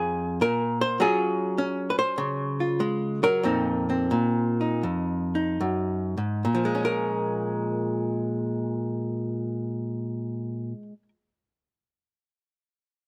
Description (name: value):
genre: solo jazz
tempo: 69-102 BPM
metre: 4/4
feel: swing 68% on 8ths, rubato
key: Bb minor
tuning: A4 = 443 Hz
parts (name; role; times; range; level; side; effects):
- archtop guitar, miked and amplified; solo; 0.0-11.1 s; F2 to C5; -27 LUFS; equal; none
room: light reverb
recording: recorded outdoors, with no room sound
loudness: -27 LUFS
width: mono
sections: 0.0-6.4 A section; 6.4-9.8 B section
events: slowing down 1.0-6.4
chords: 0.0 F7sus4; 1.0 Gbsus2; 3.4 F7sus4; 6.4 Bbm7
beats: 0.41 | 1.00 1.58 2.18 2.80 | 3.44 4.11 4.83 5.61 | 6.44 7.30 8.14 8.99